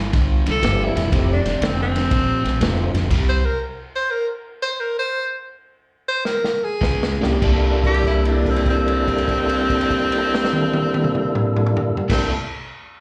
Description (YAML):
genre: electric blues shuffle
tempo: 97-121 BPM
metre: 4/4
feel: swing 67% on 8ths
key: C mixolydian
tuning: A4 = 440 Hz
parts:
  - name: overdriven semi-hollow guitar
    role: riff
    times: 0.0-3.4, 6.8-12.3 s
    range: F2 to A4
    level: -29 LUFS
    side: equal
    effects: slapback echo
  - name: upright bass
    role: bass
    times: 0.0-3.4, 6.8-12.3 s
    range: E1 to Db2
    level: -24 LUFS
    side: equal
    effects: none
  - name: vintage drum kit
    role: drums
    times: 0.1-3.3, 6.3-12.2 s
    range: crash cymbal, kick drum, ride cymbal, snare drum, toms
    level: -26 LUFS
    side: equal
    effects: none
  - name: clear tenor saxophone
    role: melody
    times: 0.5-12.3 s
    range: C4 to C5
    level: -25 LUFS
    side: equal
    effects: slapback echo
  - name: tonewheel organ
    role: accompaniment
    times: 0.6-2.9, 7.2-12.4 s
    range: C3 to A4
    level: -25 LUFS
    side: equal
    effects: slow rotary speaker, overdrive, chorus vibrato, slapback echo
room: light reverb, small room ambience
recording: live gig heard through the venue's PA, club reverb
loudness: -20 LUFS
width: mono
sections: 0.0-7.4 A section; 7.4-12.4 B section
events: slowing down 3.1-7.4; stop 3.1-6.8; drum fill 6.2-7.4; held note 7.4-12.0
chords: 0.0 G9; 1.1 F9; 3.1 C5; 6.8 Db5; 7.4 C13